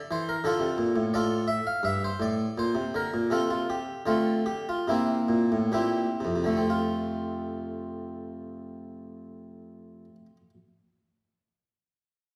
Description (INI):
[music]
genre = classical, baroque-style suite movement for harpsichord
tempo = 62-90 BPM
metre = 4/4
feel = rubato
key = F major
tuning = A4 = 440 Hz
[part]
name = harpsichord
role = solo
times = 0.0-10.5 s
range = F2 to F5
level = -29 LUFS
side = equal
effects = none
[sound]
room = wet recital hall reverb, RT60 1.5 s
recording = heard from further back in the room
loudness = -28 LUFS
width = mono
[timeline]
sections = 0.0-6.7 A section; 6.7-10.4 B section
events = slowing down 0.0-6.7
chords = 0.4 Dm; 1.8 Gm; 3.3 F/C; 4.9 C7; 6.7 F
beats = | 0.43 1.12 1.81 2.53 | 3.29 4.05 4.86 5.73 | 6.67 7.58 8.49 9.42